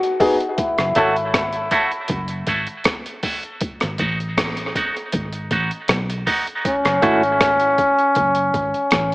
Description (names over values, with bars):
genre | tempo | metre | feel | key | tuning
dub reggae | 79 BPM | 4/4 | straight | F# dorian | A4 = 443 Hz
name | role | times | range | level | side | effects
bright trombone | second line | 0.0-9.1 s | C#4 to F#4 | -20 LUFS | left 1 dB | high-pass filter, tape echo
breakbeat sampler-style drum kit | drums | 0.0-9.1 s | hi-hat, kick drum, rim click | -22 LUFS | equal | tape echo
bright upright piano | stabs | 0.2-4.1 s | B3 to A4 | -22 LUFS | left 1 dB | high-pass filter, tape echo
vintage muted fingered electric bass | bass | 0.8-9.1 s | F#1 to B1 | -27 LUFS | equal | none
semi-hollow electric guitar | accompaniment | 1.0-7.2 s | A3 to F#4 | -22 LUFS | right 2 dB | high-pass filter, tape echo
room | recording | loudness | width
moderate plate reverb, RT60 2.5 s | echo-heavy mix, small speaker sound | -17 LUFS | side -21 dB against mid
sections
0.0-9.1 A section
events
break 0.0-0.6; filter sweep 0.0-6.6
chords
0.0 G#m7; 0.6 F#m7; 3.6 G#m7; 6.6 F#m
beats
| 0.58 1.34 2.10 2.86 | 3.61 4.37 5.13 5.89 | 6.65 7.40 8.16 8.92